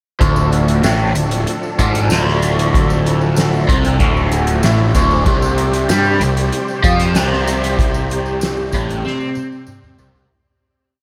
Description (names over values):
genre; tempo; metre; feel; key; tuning
psychedelic rock; 95 BPM; 4/4; straight; D minor; A4 = 442 Hz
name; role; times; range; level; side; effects
bright tonewheel organ; sustained chords; 0.2-10.3 s; C3 to C5; -25 LUFS; equal; slow rotary speaker, chorus vibrato
overdriven electric guitar; riff; 0.2-10.3 s; D2 to C4; -20 LUFS; equal; phaser
fuzz picked electric bass; bass; 0.2-10.3 s; D1 to C3; -21 LUFS; equal; overdrive
soft-mallet drum kit; drums; 0.2-10.3 s; hi-hat, kick drum, snare drum, toms; -22 LUFS; equal; none
tambourine; percussion; 0.4-10.2 s; none; -37 LUFS; equal; none
room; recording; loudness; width
moderate huge ambient reverb, RT60 7.5 s; dreamy mix soaked in reverb; -15 LUFS; mono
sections
0.2-10.3 riff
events
fade-out 7.8-10.3; drum fill 9.0-10.3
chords
0.2 Dm; 5.3 C5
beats
| 0.20 0.83 1.47 2.10 | 2.74 3.37 4.00 4.63 | 5.26 5.89 6.52 7.15 | 7.78 8.41 9.04 9.67